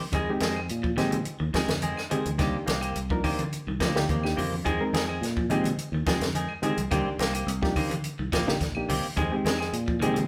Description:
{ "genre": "afrobeat", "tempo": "106 BPM", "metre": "4/4", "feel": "straight", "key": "F dorian", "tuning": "A4 = 439 Hz", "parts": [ { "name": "semi-hollow electric guitar", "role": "arpeggios", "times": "0.0-10.3 s", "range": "D3 to F3", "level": "-36 LUFS", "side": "equal", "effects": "none" }, { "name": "semi-hollow electric guitar", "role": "stabs", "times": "0.0-10.2 s", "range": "Eb3 to Ab4", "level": "-34 LUFS", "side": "equal", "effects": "none" }, { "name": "fingered electric bass", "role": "bass", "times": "0.0-10.2 s", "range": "Bb1 to Bb2", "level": "-34 LUFS", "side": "equal", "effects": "none" }, { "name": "barky reed electric piano", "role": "accompaniment", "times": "0.1-10.2 s", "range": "Ab3 to Bb4", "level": "-34 LUFS", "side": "equal", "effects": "overdrive" }, { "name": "compact cocktail drum kit", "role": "drums", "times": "0.1-10.3 s", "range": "hi-hat, kick drum, snare drum", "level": "-33 LUFS", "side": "equal", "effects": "none" }, { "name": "claves", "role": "percussion", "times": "0.1-10.2 s", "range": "none", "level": "-43 LUFS", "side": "equal", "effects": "none" }, { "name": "congas", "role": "percussion", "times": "0.1-10.3 s", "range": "none", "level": "-38 LUFS", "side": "equal", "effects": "none" } ], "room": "wet large studio reverb, RT60 1.0 s", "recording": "band playing live in one room", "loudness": "-27 LUFS", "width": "mono", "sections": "0.0-10.3 A section", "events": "none", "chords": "0.1 Fm7; 2.4 Cm7; 4.7 Fm7; 6.9 Cm7; 9.2 Fm7", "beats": "| 0.14 0.71 1.27 1.83 | 2.40 2.96 3.53 4.09 | 4.66 5.22 5.78 6.35 | 6.91 7.47 8.04 8.60 | 9.17 9.73" }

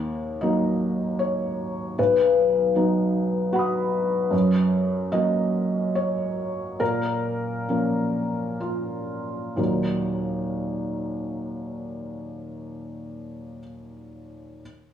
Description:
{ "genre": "neoclassical minimalist piano", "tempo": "60-78 BPM", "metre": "3/4", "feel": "rubato", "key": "Eb minor", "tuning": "A4 = 440 Hz", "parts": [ { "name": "felt-muted upright piano", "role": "solo", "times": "0.0-14.6 s", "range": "B1 to D#6", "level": "-23 LUFS", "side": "left 1 dB", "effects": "none" } ], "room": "wet spring reverb, RT60 2.0 s", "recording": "studio reverb", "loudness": "-22 LUFS", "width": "side -9 dB against mid", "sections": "0.0-9.6 A section; 9.6-12.5 B section", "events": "slowing down 3.1-9.6", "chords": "0.0 Ebm; 2.0 B; 4.3 Gb; 6.8 Bbm; 9.6 Ebm", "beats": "0.40 1.20 | 1.98 2.75 3.54 | 4.33 5.12 5.95 | 6.80 7.68 8.60 | 9.58 10.54 11.50" }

